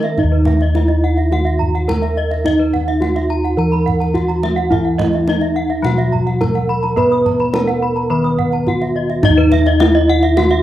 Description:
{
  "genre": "Balinese gamelan",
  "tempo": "106 BPM",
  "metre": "4/4",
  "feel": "straight",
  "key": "Eb pelog",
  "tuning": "A4 = 440 Hz",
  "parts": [
    { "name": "gamelan-type bronze metallophone", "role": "melody", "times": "0.0-10.6 s", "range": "Eb4 to Cb5-20c", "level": "-18 LUFS", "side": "equal", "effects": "none" },
    { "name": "gamelan-type bronze metallophone", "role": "accompaniment", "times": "0.0-0.2, 4.7-9.2 s", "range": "Eb3 to Cb4-20c", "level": "-23 LUFS", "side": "left 4 dB", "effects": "none" },
    { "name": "gamelan-type bronze metallophone", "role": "arpeggios", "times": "0.0-10.5 s", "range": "Eb5 to Cb6-20c", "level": "-24 LUFS", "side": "left 4 dB", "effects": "none" },
    { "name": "gamelan-type bronze metallophone", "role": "arpeggios", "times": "0.0-10.6 s", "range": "Cb5-20c to Eb6", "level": "-24 LUFS", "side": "right 7 dB", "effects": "none" },
    { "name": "gamelan-type bossed gongs", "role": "bass", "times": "0.0-10.6 s", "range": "Eb2 to Cb5-20c", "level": "-16 LUFS", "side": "equal", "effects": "none" },
    { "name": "kendang", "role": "percussion", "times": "0.0-10.6 s", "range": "none", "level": "-23 LUFS", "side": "right 2 dB", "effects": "none" }
  ],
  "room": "small room ambience",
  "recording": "dry, close 1970s-style studio recording",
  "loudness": "-13 LUFS",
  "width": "side -13 dB against mid",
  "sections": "0.2-9.2 A section; 9.2-10.6 A section",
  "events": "none",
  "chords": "none"
}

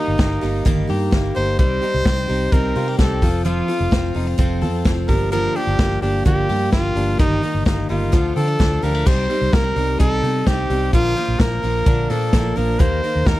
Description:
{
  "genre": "jangly indie pop",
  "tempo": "128 BPM",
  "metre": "4/4",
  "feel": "straight",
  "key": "unclear",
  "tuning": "A4 = 437 Hz",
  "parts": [
    { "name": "bright trumpet", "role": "melody", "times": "0.0-13.4 s", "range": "Eb4 to C5", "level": "-23 LUFS", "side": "equal", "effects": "none" },
    { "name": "picked steel-string acoustic guitar", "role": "accompaniment", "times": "0.0-13.4 s", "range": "G2 to Bb4", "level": "-25 LUFS", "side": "right 5 dB", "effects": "none" },
    { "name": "direct-recorded clean electric guitar", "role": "arpeggios", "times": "0.0-13.4 s", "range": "Eb3 to A4", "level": "-26 LUFS", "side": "left 7 dB", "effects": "none" },
    { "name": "vintage muted fingered electric bass", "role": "bass", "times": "0.1-13.4 s", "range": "F1 to D3", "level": "-22 LUFS", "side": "equal", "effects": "none" },
    { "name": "vintage drum kit", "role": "drums", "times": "0.2-13.4 s", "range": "crash cymbal, hi-hat, kick drum, snare drum", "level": "-18 LUFS", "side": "equal", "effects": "none" }
  ],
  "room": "little or no reverb",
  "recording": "dry, close 1970s-style studio recording",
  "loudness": "-16 LUFS",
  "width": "side -16 dB against mid",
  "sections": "0.0-9.1 A section; 9.1-13.4 B section",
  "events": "none",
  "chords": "0.0 Eb/G; 1.6 Cm; 3.2 F; 5.1 Gm7; 7.2 Eb/G; 8.1 Dm; 9.1 Cm; 10.9 Bb; 12.8 Eb"
}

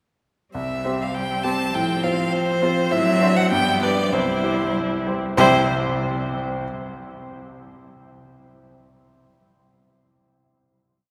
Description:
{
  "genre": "quick classical-period movement for piano quartet",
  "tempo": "95-102 BPM",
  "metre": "2/4",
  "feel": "straight",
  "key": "C major",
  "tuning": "A4 = 438 Hz",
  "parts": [
    { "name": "rich cello", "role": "second line", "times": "0.5-5.7 s", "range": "F3 to G3", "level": "-28 LUFS", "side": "equal", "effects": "none" },
    { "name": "bright grand piano", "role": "accompaniment", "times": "0.5-6.6 s", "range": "C2 to G5", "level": "-26 LUFS", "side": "equal", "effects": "none" },
    { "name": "clear violin", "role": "melody", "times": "0.6-5.7 s", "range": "C5 to A5", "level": "-25 LUFS", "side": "equal", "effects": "none" },
    { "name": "rich viola", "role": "accompaniment", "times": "0.6-5.7 s", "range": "B3 to E4", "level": "-31 LUFS", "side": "equal", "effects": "none" }
  ],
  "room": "wet cathedral reverb, RT60 4.8 s",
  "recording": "recorded in a church or concert hall",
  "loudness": "-21 LUFS",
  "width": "mono",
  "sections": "0.6-5.4 A section; 5.4-6.6 final chord",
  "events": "none",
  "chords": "0.6 C5; 1.8 F/A; 2.9 D7/A; 3.5 G; 4.1 C"
}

